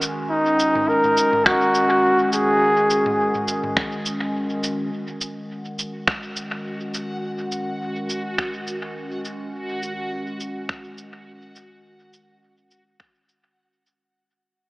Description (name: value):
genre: ambient dub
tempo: 104 BPM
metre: 4/4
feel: swing 54% on 16ths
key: unclear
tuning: A4 = 440 Hz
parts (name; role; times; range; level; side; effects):
- warbly tape-like pad; sustained chords; 0.0-14.2 s; D#3 to F#4; -27 LUFS; equal; chorus, built-in reverb
- organic electronic drum kit; drums; 0.0-14.0 s; cabasa, finger snaps, toms; -26 LUFS; equal; dub echo
- trumpet with bucket mute; melody; 0.3-3.4 s; D#4 to A#4; -18 LUFS; equal; dub echo
- electronic kick drum; drums; 1.5-13.1 s; none; -29 LUFS; equal; none
- backwards swelling texture; texture; 5.6-14.2 s; F#4 to F#5; -34 LUFS; equal; built-in reverb
room: moderate huge ambient reverb, RT60 4.1 s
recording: AM radio sound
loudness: -20 LUFS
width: side -23 dB against mid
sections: 0.0-4.9 A section; 4.9-14.2 B section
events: fade-out 4.9-14.2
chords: 0.0 G#7(no3)